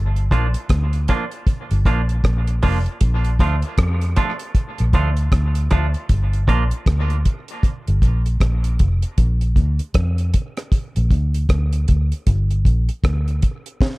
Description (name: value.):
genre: dub reggae.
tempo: 78 BPM.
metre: 4/4.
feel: swing 60% on 16ths.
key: unclear.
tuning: A4 = 439 Hz.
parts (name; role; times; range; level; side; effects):
vintage muted fingered electric bass; bass; 0.0-13.4 s; F1 to F2; -18 LUFS; equal; none.
deep reggae drum kit; drums; 0.2-14.0 s; hi-hat, kick drum, rim click, snare drum; -18 LUFS; equal; none.
semi-hollow electric guitar; accompaniment; 0.3-6.6 s; F3 to F4; -26 LUFS; right 3 dB; tape echo.
room: studio reverb.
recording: dark, warm production.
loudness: -16 LUFS.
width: side -21 dB against mid.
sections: 0.0-14.0 A section.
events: drum fill 13.8.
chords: 0.0 Gm7; 3.0 Bbmaj7; 6.1 Gm7; 9.2 Bb; 12.3 Gm.